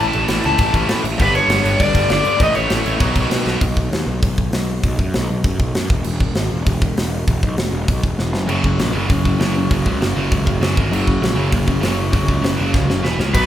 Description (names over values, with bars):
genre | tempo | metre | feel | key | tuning
punk rock | 198 BPM | 4/4 | straight | unclear | A4 = 442 Hz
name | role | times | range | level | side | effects
overdriven semi-hollow guitar | melody | 0.0-3.5, 13.3-13.5 s | B4 to A5 | -18 LUFS | left 2 dB | none
distorted electric guitar | riff | 0.0-3.6, 8.5-13.5 s | F#2 to B3 | -22 LUFS | equal | overdrive
tight distorted guitar | riff | 0.0-3.6, 8.5-13.5 s | F#2 to E4 | -23 LUFS | right 1 dB | distortion
fuzz picked electric bass | bass | 0.0-13.5 s | E1 to B2 | -20 LUFS | equal | overdrive
tight metal drum kit | drums | 0.1-13.4 s | crash cymbal, hi-hat, kick drum, snare drum | -20 LUFS | equal | none
room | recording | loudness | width
light reverb | band playing live in one room | -15 LUFS | side -12 dB against mid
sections
0.0-3.6 A section; 3.6-13.3 B section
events
drum fill 3.5, 8.2-8.5, 12.7-13.3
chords
0.0 A; 1.2 G; 2.4 A; 3.0 B; 3.6 B5; 5.9 N.C.; 8.5 F#5; 10.8 G#5; 10.9 F#5; 13.0 E5; 13.2 C#5